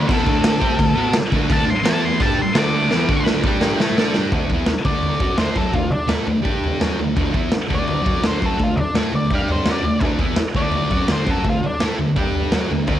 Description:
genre	garage rock duo or trio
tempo	168 BPM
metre	4/4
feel	straight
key	D mixolydian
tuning	A4 = 440 Hz
part	octave-fuzz lead guitar	melody	0.0-11.8 s	D4 to D6	-24 LUFS	left 1 dB	distortion, cassette tape
part	thick fuzz guitar	riff	0.0-13.0 s	D3 to D5	-20 LUFS	equal	distortion, cassette tape
part	raw garage drum kit	drums	0.1-13.0 s	crash cymbal, kick drum, snare drum, toms	-20 LUFS	equal	cassette tape
room	light reverb, studio reverb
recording	home recording on cassette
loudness	-16 LUFS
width	side -11 dB against mid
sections	0.0-4.3 A section; 4.3-13.0 B section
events	lead electric guitar solo 0.0-4.3; drum fill 2.9-4.3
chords	0.0 D5; 1.9 E5; 2.2 D5; 3.4 G5; 3.8 D5; 4.3 D; 6.5 G5; 6.8 D; 9.3 G5; 9.7 D; 12.2 G5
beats	| 0.09 0.44 0.79 1.15 | 1.50 1.85 2.21 2.56 | 2.91 3.27 3.62 3.97 | 4.33 4.68 5.04 5.39 | 5.75 6.10 6.46 6.81 | 7.17 7.53 7.88 8.24 | 8.60 8.95 9.31 9.67 | 10.02 10.38 10.74 11.10 | 11.46 11.81 12.17 12.53 | 12.89

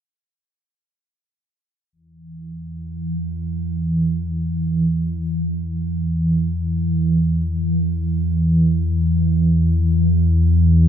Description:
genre	ambient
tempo	free time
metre	none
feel	none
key	unclear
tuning	A4 = 440 Hz
part	deep rumbling drone	solo	2.4-10.9 s	E2 to E3	-17 LUFS	equal	built-in reverb, phaser
room	wet cathedral reverb, RT60 7.0 s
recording	dark, warm production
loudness	-17 LUFS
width	side -9 dB against mid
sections	1.9-10.9 A section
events	none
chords	none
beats	free time

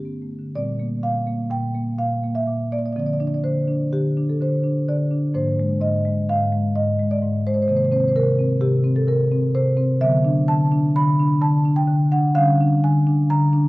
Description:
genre	classical, contemporary piece for solo marimba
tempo	127 BPM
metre	5/4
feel	rubato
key	unclear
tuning	A4 = 441 Hz
part	marimba with soft mallets	solo	0.0-13.7 s	G2 to B5	-18 LUFS	equal	none
room	wet concert hall reverb, RT60 2.3 s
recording	worn, warbling old tape, cassette tape, warbly pitch drift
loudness	-18 LUFS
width	side -20 dB against mid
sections	0.6-13.7 A section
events	none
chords	0.0 Gadd9; 0.6 Bb69; 3.0 Dm7; 5.3 Ab69; 7.7 Cm7; 10.0 D69; 12.4 C#/D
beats	0.06 | 0.56 1.05 1.53 2.00 2.48 | 2.96 3.45 3.92 4.40 4.88 | 5.35 5.82 6.29 6.76 7.23 | 7.69 8.16 8.62 9.09 9.55 | 10.02 10.48 10.95 11.42 11.88 | 12.36 12.83 13.30

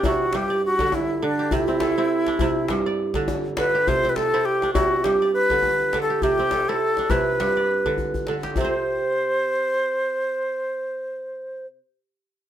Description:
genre	west african traditional, West African string and xylophone music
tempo	102 BPM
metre	4/4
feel	swing 56% on 16ths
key	C major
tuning	A4 = 440 Hz
part	bright baroque flute	melody	0.0-11.7 s	D4 to C5	-22 LUFS	equal	none
part	kora	arpeggios	0.0-11.9 s	G2 to D5	-25 LUFS	right 3 dB	none
part	djembe	percussion	0.0-8.8 s	none	-28 LUFS	left 3 dB	none
room	moderate studio reverb, RT60 0.6 s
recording	none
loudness	-20 LUFS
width	side -10 dB against mid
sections	0.0-8.6 A section; 8.6-10.9 B section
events	drum fill 7.8-8.6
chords	0.3 G5; 1.5 C; 2.7 G5; 3.9 C; 5.0 G; 6.2 C; 7.4 G; 8.6 C5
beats	0.34 0.93 | 1.51 2.10 2.69 3.28 | 3.87 4.46 5.04 5.63 | 6.22 6.80 7.39 7.98 | 8.56 9.15 9.73 10.32

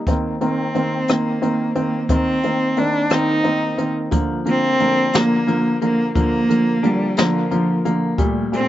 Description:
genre	six-eight pop ballad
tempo	59 BPM (dotted quarters)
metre	6/8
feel	straight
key	Bb major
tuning	A4 = 440 Hz
part	warm baby grand piano	accompaniment	0.1-8.7 s	Bb2 to C4	-20 LUFS	equal	slapback echo
part	jazz brush drum kit	drums	0.1-8.7 s	hi-hat, kick drum, rim click, snare drum	-22 LUFS	left 1 dB	none
part	clear cello	melody	0.4-8.7 s	F3 to Eb4	-20 LUFS	equal	slapback echo
part	direct-recorded clean electric guitar	arpeggios	4.1-8.7 s	F3 to D4	-28 LUFS	left 6 dB	phaser, slapback echo
room	little or no reverb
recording	recorded outdoors, with no room sound, nothing above 7.7 kHz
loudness	-16 LUFS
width	side -13 dB against mid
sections	0.0-8.7 A section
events	none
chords	0.1 Cm7; 4.1 Bb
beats	| 0.07 1.09 | 2.10 3.12 | 4.13 5.14 | 6.16 7.17 | 8.18

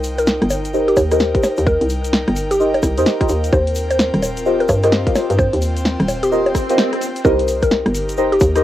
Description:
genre	UK garage, two-step garage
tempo	129 BPM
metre	4/4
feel	swing 63% on 16ths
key	C minor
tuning	A4 = 440 Hz
part	airy breathy pad	sustained chords	0.0-8.6 s	C4 to G5	-26 LUFS	left 1 dB	chorus, sidechain pumping, cassette tape
part	hollow knocking FM bass	bass	0.0-8.6 s	Eb1 to G2	-20 LUFS	equal	tube saturation
part	punchy analog drum machine	drums	0.0-8.6 s	bongos, hi-hat, rim click, snare drum	-20 LUFS	equal	overdrive, cassette tape
part	tube shaker	percussion	0.0-8.6 s	none	-34 LUFS	left 2 dB	none
part	mallet-like synth pluck	melody	0.2-8.5 s	G4 to C5	-21 LUFS	equal	chorus, cassette tape
part	deep mellow chord stab	stabs	0.7-8.6 s	Eb4 to Eb5	-18 LUFS	left 1 dB	chorus, phaser, cassette tape, tape echo
part	electronic kick drum	drums	1.0-8.5 s	none	-18 LUFS	equal	cassette tape
part	swell	sound effects	6.5-7.2 s	none	-23 LUFS	right 1 dB	none
room	light reverb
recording	home recording on cassette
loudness	-14 LUFS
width	side -13 dB against mid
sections	0.0-7.2 A section; 7.2-8.6 B section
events	filter sweep on synth stab 0.0-7.2; swell 6.5-7.2; drop 7.2-8.6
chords	0.0 Cm7; 3.3 Eb69; 7.2 Cm7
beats	0.27 0.74 1.20 | 1.67 2.13 2.60 3.06 | 3.53 3.99 4.46 4.92 | 5.39 5.85 6.32 6.78 | 7.25 7.71 8.18

